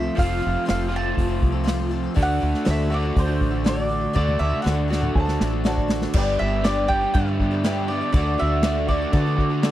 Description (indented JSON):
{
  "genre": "folk rock and heartland rock",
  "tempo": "121 BPM",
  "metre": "4/4",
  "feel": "straight",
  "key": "G major",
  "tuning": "A4 = 440 Hz",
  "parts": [
    { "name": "mandolin", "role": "melody", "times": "0.0-9.7 s", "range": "C5 to A5", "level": "-26 LUFS", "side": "right 2 dB", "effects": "none" },
    { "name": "picked twelve-string acoustic guitar", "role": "accompaniment", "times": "0.0-9.7 s", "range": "G2 to B4", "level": "-30 LUFS", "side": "left 5 dB", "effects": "none" },
    { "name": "crunchy overdriven guitar", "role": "riff", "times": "0.0-9.7 s", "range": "G2 to G4", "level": "-26 LUFS", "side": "right 2 dB", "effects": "none" },
    { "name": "deep dub fingered electric bass", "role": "bass", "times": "0.0-9.7 s", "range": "F1 to D3", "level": "-24 LUFS", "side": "equal", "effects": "none" },
    { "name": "unplugged drum kit", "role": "drums", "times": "0.2-9.7 s", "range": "crash cymbal, hi-hat, kick drum, snare drum, toms", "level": "-23 LUFS", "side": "equal", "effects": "none" },
    { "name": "clear concert grand piano", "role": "accompaniment", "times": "2.2-9.7 s", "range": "F#4 to E5", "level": "-35 LUFS", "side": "right 1 dB", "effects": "none" },
    { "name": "clear upright piano", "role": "second line", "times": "5.2-6.0 s", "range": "F#5 to A5", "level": "-30 LUFS", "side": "right 1 dB", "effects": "none" }
  ],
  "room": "little or no reverb",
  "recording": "dry, close 1970s-style studio recording",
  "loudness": "-19 LUFS",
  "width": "side -13 dB against mid",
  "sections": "0.0-6.1 A section; 6.1-9.7 B section",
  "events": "drum fill 4.2-6.1",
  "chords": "0.0 F; 2.2 D; 6.1 G; 8.1 D"
}